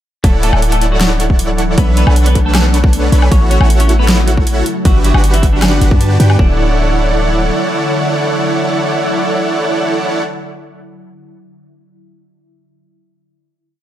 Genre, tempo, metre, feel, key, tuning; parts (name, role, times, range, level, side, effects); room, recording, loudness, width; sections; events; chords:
future bass; 156 BPM; 4/4; half-time; D major; A4 = 441 Hz
semi-hollow electric guitar; melody; 0.2-10.9 s; D3 to C#5; -23 LUFS; left 1 dB; wide subtle chorus, sidechain pumping, analog delay
ethereal airy pad; sustained chords; 0.8-10.2 s; C#3 to F#5; -22 LUFS; left 1 dB; ensemble chorus, built-in reverb, sidechain pumping
dense compressed supersaw; riff; 0.2-10.2 s; D4 to B5; -16 LUFS; right 1 dB; sidechain pumping, analog delay
warm 808-style bass; bass; 0.2-7.5 s; D1 to G2; -12 LUFS; equal; sidechain pumping
big-room dance drum kit; drums; 0.2-6.4 s; hi-hat, snare drum, woodblock; -19 LUFS; equal
electronic kick drum; drums; 0.2-6.5 s; -11 LUFS; equal; overdrive
light reverb; -10 LUFS; side -12 dB against mid
0.2-6.4 drop; 6.4-9.5 final chord
drop 0.2-6.4
0.2 Dmaj9; 1.8 Bm9; 3.3 F#m7/A; 4.7 Gmaj7; 6.4 Dmaj9